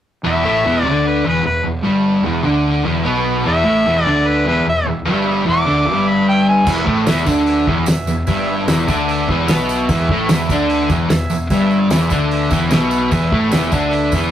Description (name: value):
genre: garage rock duo or trio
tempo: 149 BPM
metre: 4/4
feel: straight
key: unclear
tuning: A4 = 440 Hz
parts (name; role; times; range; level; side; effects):
- fuzz guitar; riff; 0.2-14.3 s; E2 to D4; -16 LUFS; equal; distortion
- fuzz fingered electric bass; bass; 0.2-14.3 s; E1 to D2; -25 LUFS; equal; overdrive
- mellow harmonica; melody; 0.3-6.7 s; B4 to D6; -17 LUFS; left 1 dB; overdrive
- combo organ; sustained chords; 3.5-14.2 s; B4 to B5; -26 LUFS; right 1 dB; spring reverb
- cloth-damped thuddy drum kit; drums; 6.7-14.2 s; crash cymbal, hi-hat, kick drum, snare drum; -18 LUFS; equal; none
- tambourine; percussion; 6.7-14.2 s; none; -33 LUFS; right 5 dB; none
room: moderate studio reverb, RT60 0.6 s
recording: rough rehearsal-room recording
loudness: -13 LUFS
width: side -10 dB against mid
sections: 0.3-6.7 A section; 6.7-14.3 B section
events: transistor combo organ fill 9.3-9.9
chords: 0.3 E